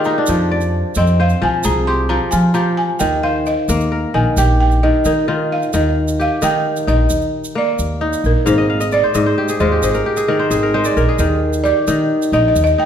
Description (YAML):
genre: west african traditional, West African string and xylophone music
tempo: 88 BPM (dotted quarters)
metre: 12/8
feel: straight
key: unclear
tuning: A4 = 440 Hz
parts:
  - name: balafon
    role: melody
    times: 0.0-12.9 s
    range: Bb4 to C6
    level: -20 LUFS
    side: right 1 dB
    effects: none
  - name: kora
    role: arpeggios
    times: 0.0-12.9 s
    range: Ab2 to F5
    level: -17 LUFS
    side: left 1 dB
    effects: none
  - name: upright bass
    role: bass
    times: 0.0-12.7 s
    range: Ab1 to F3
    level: -18 LUFS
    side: equal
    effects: none
  - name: tube shaker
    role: percussion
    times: 0.0-12.7 s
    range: none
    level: -30 LUFS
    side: right 6 dB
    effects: none
room: wet recital hall reverb, RT60 1.4 s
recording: dark, warm production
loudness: -14 LUFS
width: side -9 dB against mid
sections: 0.0-5.7 A section; 5.7-12.9 B section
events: kora fill 0.0, 8.5-11.2; balafon solo 0.0-5.7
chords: 0.3 Fm; 3.0 Eb; 8.5 Ab; 11.2 Eb